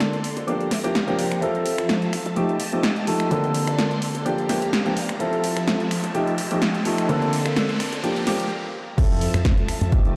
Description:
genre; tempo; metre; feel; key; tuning
filtered disco house; 127 BPM; 4/4; swing 54% on 16ths; F major; A4 = 441 Hz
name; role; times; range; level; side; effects
warm baby grand piano; accompaniment; 0.0-10.1 s; D3 to A4; -26 LUFS; equal; phaser, sidechain pumping, low-pass filter
phased string machine; sustained chords; 0.0-10.2 s; F3 to C6; -33 LUFS; equal; ensemble chorus, phaser, sidechain pumping, low-pass filter
slap bass with an envelope filter; bass; 0.0-10.2 s; F1 to E3; -33 LUFS; equal; tube saturation, sidechain pumping, high-pass filter, low-pass filter
punchy analog drum machine; drums; 0.0-10.1 s; crash cymbal, finger snaps, hi-hat, snare drum; -29 LUFS; equal; overdrive, sidechain pumping on hats, sidechain pumping on cymbals
riser; sound effects; 4.1-8.5 s; none; -39 LUFS; equal; none
electronic kick drum; drums; 9.0-10.0 s; none; -21 LUFS; equal; overdrive
room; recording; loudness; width
wet lush hall reverb, RT60 2.0 s; played on a big sound system in a bare room, stone room reverb; -23 LUFS; mono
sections
0.0-9.0 A section; 9.0-10.2 B section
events
build-up 0.0-9.0; riser 4.1-8.5; stop 8.5-9.0; drop 9.0-10.2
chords
0.5 Gm7; 1.4 Fmaj7; 2.4 F9; 3.3 Bbmaj9; 4.3 Gm7; 5.2 Fmaj7; 6.1 F9; 7.1 Bbmaj9; 8.0 Gm7; 9.0 Fmaj7

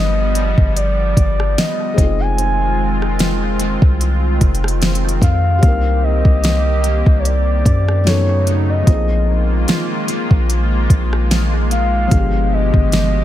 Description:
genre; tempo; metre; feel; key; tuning
contemporary R&B; 74 BPM; 4/4; swing 54% on 16ths; C minor; A4 = 440 Hz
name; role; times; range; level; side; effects
gliding portamento lead; melody; 0.0-13.2 s; Db5 to Ab5; -22 LUFS; equal; chorus, analog delay
felt-muted upright piano; accompaniment; 0.0-13.2 s; B2 to Bb4; -26 LUFS; left 6 dB; analog delay
lush unison pad; sustained chords; 0.0-13.2 s; B2 to G4; -22 LUFS; equal; chorus, sidechain pumping
warm 808-style bass; bass; 0.0-13.2 s; F1 to F#2; -16 LUFS; equal; none
smooth R&B drum kit; drums; 0.4-13.1 s; hi-hat, kick drum, rim click, snare drum; -16 LUFS; equal; none
room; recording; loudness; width
digital ambience; echo-heavy mix; -13 LUFS; side -12 dB against mid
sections
0.0-13.2 A section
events
none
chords
0.0 G7b9; 2.0 Fm7; 5.6 Cm7; 8.1 B9; 8.9 Bb7sus4; 12.1 G7b9

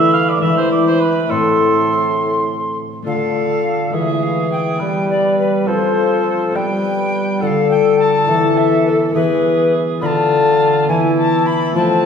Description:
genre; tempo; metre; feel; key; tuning
classical, renaissance-style consort dance; 69 BPM (dotted quarters); 6/8; straight; unclear; A4 = 440 Hz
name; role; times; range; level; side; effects
mellow alto recorder; melody; 0.0-12.1 s; A4 to C6; -19 LUFS; left 2 dB; none
mellow cor anglais; second line; 0.0-12.1 s; C4 to F5; -22 LUFS; right 3 dB; none
concert harp; accompaniment; 0.0-12.1 s; A2 to E5; -17 LUFS; left 3 dB; none
mellow bassoon; bass; 0.0-12.1 s; A2 to G3; -20 LUFS; right 1 dB; none
room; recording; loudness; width
wet recital hall reverb, RT60 1.6 s; heard from further back in the room; -13 LUFS; side -6 dB against mid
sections
0.0-3.1 A section; 3.1-12.1 B section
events
none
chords
0.4 E7; 1.3 Am; 3.1 Dm; 3.9 E; 4.8 G; 5.7 F; 6.6 G; 7.4 Dm; 8.3 Esus4; 9.1 E; 10.0 Dm; 10.9 E5

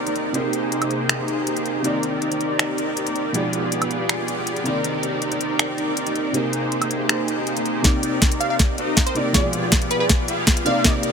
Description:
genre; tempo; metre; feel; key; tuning
future bass; 160 BPM; 4/4; half-time; C minor; A4 = 435 Hz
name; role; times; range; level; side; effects
felt-muted upright piano; accompaniment; 0.0-11.1 s; B2 to D6; -27 LUFS; right 1 dB; sidechain pumping, tape echo
concert harp; arpeggios; 0.0-10.8 s; Bb3 to Bb4; -29 LUFS; right 2 dB; sidechain pumping, tape echo
supersaw chords; riff; 0.0-11.1 s; C3 to F5; -24 LUFS; equal; wide subtle chorus, cassette tape, sidechain pumping, low-pass filter, tape echo
trap drum kit; drums; 0.1-11.1 s; finger snaps, hi-hat, snare drum, woodblock; -23 LUFS; equal; none
electronic kick drum; drums; 7.8-10.9 s; none; -20 LUFS; equal; none
plucky unison lead; melody; 8.4-10.9 s; B4 to F5; -25 LUFS; equal; sidechain pumping, digital delay
room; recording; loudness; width
light reverb, digital ambience; none; -19 LUFS; side -6 dB against mid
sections
0.0-7.8 A section; 7.8-11.1 B section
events
build-up 7.8-11.1; drum fill 7.8-11.1; filter sweep on supersaw synth 7.8-11.1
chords
0.3 Abmaj9/C; 1.8 Cm9; 3.3 G7b9/B; 4.7 Cm9; 9.3 G7b9/B

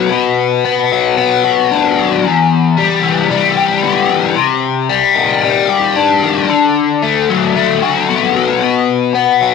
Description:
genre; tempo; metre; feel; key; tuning
rock; 113 BPM; 4/4; straight; E minor; A4 = 442 Hz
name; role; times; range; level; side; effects
biting overdriven guitar; solo; 0.0-9.5 s; E2 to G4; -10 LUFS; left 7 dB; flanger
room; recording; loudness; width
light reverb, digital ambience; none; -10 LUFS; side -5 dB against mid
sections
0.0-9.5 A section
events
none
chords
0.1 Bm; 2.2 Em; 4.4 Cmadd9; 6.5 D6; 8.6 B5

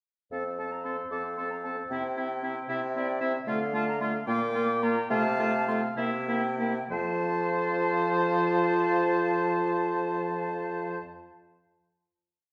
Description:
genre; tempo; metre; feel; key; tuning
quick classical-period movement for wind quintet; 63-77 BPM (dotted quarters); 6/8; straight; F major; A4 = 437 Hz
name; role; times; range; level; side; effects
concert flute; melody; 0.3-11.0 s; F5 to D6; -36 LUFS; equal; none
warm oboe; second line; 0.3-11.0 s; E4 to C5; -36 LUFS; equal; none
clear French horn; accompaniment; 0.3-11.0 s; F3 to C4; -35 LUFS; equal; none
warm clarinet; accompaniment; 0.3-11.0 s; F4 to G5; -36 LUFS; equal; none
warm bassoon; bass; 0.3-11.0 s; F2 to D3; -35 LUFS; equal; none
room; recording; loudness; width
wet recital hall reverb, RT60 1.3 s; heard from further back in the room; -28 LUFS; mono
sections
0.3-6.9 A section; 6.9-10.6 final chord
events
slowing down 2.7-6.9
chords
0.3 F; 1.9 C; 3.5 Dm; 4.3 Bb; 5.1 F/C; 6.0 C7; 6.9 F

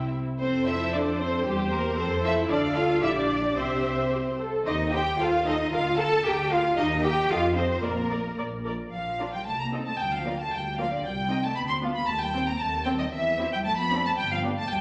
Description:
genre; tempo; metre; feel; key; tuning
quick classical-period movement for string orchestra; 114 BPM; 2/4; rubato; F major, Bb major from 4.7 s; A4 = 440 Hz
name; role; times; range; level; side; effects
warm studio violin section; second line; 0.0-14.5 s; F4 to A5; -36 LUFS; equal; none
warm studio viola section; accompaniment; 0.0-14.5 s; Bb3 to F5; -34 LUFS; equal; none
warm studio cello section; bass; 0.0-14.8 s; C3 to A4; -32 LUFS; equal; none
warm studio double bass section; bass; 0.0-14.8 s; G1 to F2; -36 LUFS; equal; none
warm studio violin section; melody; 0.4-14.8 s; G4 to C6; -31 LUFS; equal; none
room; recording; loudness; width
wet recital hall reverb, RT60 1.3 s; none; -26 LUFS; mono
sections
0.4-8.9 A section; 8.9-14.8 B section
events
none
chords
0.4 F; 1.5 C/E; 2.0 F; 2.5 Dm; 3.0 Gm/Bb; 3.6 C; 4.7 Cm/Eb; 5.2 F7/Eb; 5.7 Bb/D; 6.3 Bb7/D; 6.8 Eb; 7.3 F7; 7.8 Bb; 9.5 Adim/C; 10.0 Bb/D; 11.0 Cm; 11.6 Bdim/D; 12.1 Cm/Eb; 13.1 C/E; 13.6 Dm7/F; 14.2 G7

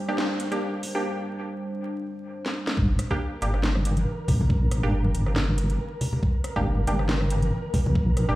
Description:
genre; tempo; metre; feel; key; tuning
deep dubstep; 139 BPM; 4/4; swing 55% on 16ths, half-time; G minor; A4 = 445 Hz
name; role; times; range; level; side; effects
dark analog pad; sustained chords; 0.0-2.8 s; G3 to C5; -33 LUFS; equal; chorus, phaser
filtered dub chord stab; stabs; 0.1-8.3 s; Bb3 to G4; -31 LUFS; right 1 dB; chorus, dub echo
garage drum kit; drums; 0.1-8.3 s; hi-hat, rim click, snare drum; -31 LUFS; equal; studio ambience
electronic kick drum; drums; 0.8-8.0 s; none; -25 LUFS; equal; high-pass filter on kick, studio ambience
deep soft wobble bass; bass; 2.8-8.4 s; G1 to Bb1; -23 LUFS; equal; chorus
flickering grainy texture; texture; 3.4-8.4 s; Bb4; -36 LUFS; right 1 dB; built-in reverb
congas; percussion; 4.0-7.9 s; none; -29 LUFS; left 1 dB; dub echo
room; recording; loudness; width
moderate echo chamber reverb, RT60 2.0 s; played on a big sound system in a bare room, large studio reverb, vinyl crackle; -23 LUFS; side -17 dB against mid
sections
0.0-2.8 A section; 2.8-8.4 B section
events
build-up 0.0-2.8; break 1.0-2.8; drum fill 2.4-2.8; drop 2.8-8.4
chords
0.0 Gm

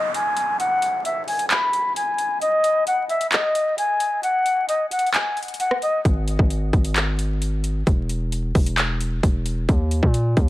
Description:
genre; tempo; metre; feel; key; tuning
hip hop, trap; 132 BPM; 4/4; half-time; unclear; A4 = 440 Hz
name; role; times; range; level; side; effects
breathy bright jazz flute; melody; 0.0-6.0 s; D#5 to B5; -20 LUFS; left 1 dB; low-pass filter, ping-pong delay
downlifter; sound effects; 0.0-2.4 s; none; -33 LUFS; right 1 dB; none
trap drum kit; drums; 0.1-10.5 s; handclaps, hi-hat, kick drum, rim click; -22 LUFS; equal; overdrive
distorted 808-style bass; bass; 6.0-10.5 s; E1 to A#2; -22 LUFS; equal; distortion
room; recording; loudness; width
little or no reverb; vinyl crackle; -19 LUFS; side -16 dB against mid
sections
0.0-10.5 A section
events
break 0.0-6.1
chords
0.0 N.C.; 9.7 D#5

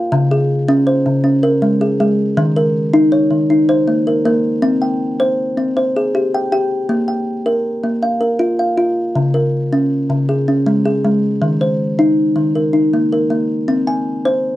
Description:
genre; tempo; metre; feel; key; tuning
southern african traditional, mbira-style interlocking cycle; 106 BPM (dotted quarters); 12/8; straight; Bb dorian; A4 = 440 Hz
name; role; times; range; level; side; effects
kalimba; solo; 0.0-14.6 s; Db3 to Ab5; -13 LUFS; equal; none
room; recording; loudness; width
little or no reverb; close, detailed microphones; -13 LUFS; side -15 dB against mid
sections
0.0-6.9 A section; 6.9-14.6 B section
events
none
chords
0.1 Db5; 2.4 Eb5; 4.6 C5; 6.9 Bb5; 9.2 Db5; 11.4 Eb5; 13.7 C5

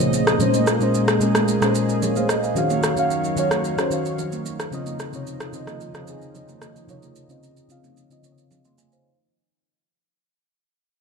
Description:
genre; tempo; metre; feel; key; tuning
amapiano; 111 BPM; 4/4; straight; unclear; A4 = 439 Hz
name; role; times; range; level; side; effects
mellow FM electric piano; accompaniment; 0.0-9.2 s; Bb2 to C6; -22 LUFS; left 1 dB; chorus, phaser, low-pass filter
lush unison pad; sustained chords; 0.0-9.0 s; Bb2 to F5; -26 LUFS; right 1 dB; chorus, low-pass filter
electronic shaker and rim click; drums; 0.0-9.0 s; none; -24 LUFS; equal; none
congas; percussion; 0.0-8.9 s; none; -30 LUFS; right 9 dB; none
room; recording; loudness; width
moderate lush hall reverb, RT60 1.9 s; none; -19 LUFS; side -5 dB against mid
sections
0.0-9.1 A section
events
fade-out 0.0-9.1; filter sweep 0.0-9.1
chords
0.4 Bbm9; 2.6 Ebm9; 4.7 Dbmaj9

